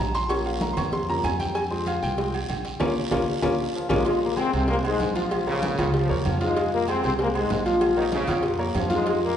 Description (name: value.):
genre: latin, salsa.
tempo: 192 BPM.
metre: 4/4.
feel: straight.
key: unclear.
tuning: A4 = 441 Hz.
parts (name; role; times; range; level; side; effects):
bright baby grand piano; accompaniment; 0.0-9.3 s; F3 to Db6; -26 LUFS; left 1 dB; none.
upright bass; bass; 0.0-9.4 s; Bb1 to F2; -30 LUFS; equal; none.
cowbell; percussion; 0.1-9.2 s; none; -32 LUFS; left 1 dB; none.
guiro; percussion; 0.1-9.4 s; none; -41 LUFS; right 3 dB; none.
agogo bells and timbales; percussion; 0.3-9.2 s; none; -35 LUFS; right 5 dB; none.
congas; percussion; 0.3-9.4 s; none; -33 LUFS; equal; none.
brilliant trombone section; melody; 3.7-9.4 s; Ab2 to F4; -27 LUFS; left 2 dB; none.
brilliant trombone section; second line; 5.5-8.7 s; Bb2 to F3; -30 LUFS; right 2 dB; none.
room: wet recital hall reverb, RT60 1.7 s.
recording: recorded in a church or concert hall, nothing above 10.5 kHz.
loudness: -22 LUFS.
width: side -9 dB against mid.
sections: 0.0-4.1 A section; 4.1-9.4 B section.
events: grand piano solo 0.0-4.1; drum fill 2.8-4.1; band accent 2.8-4.1.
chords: 0.3 Bbm; 1.6 Fm; 2.8 Bbm; 4.1 Fm; 5.3 Bbm; 6.6 Fm; 7.8 Bbm.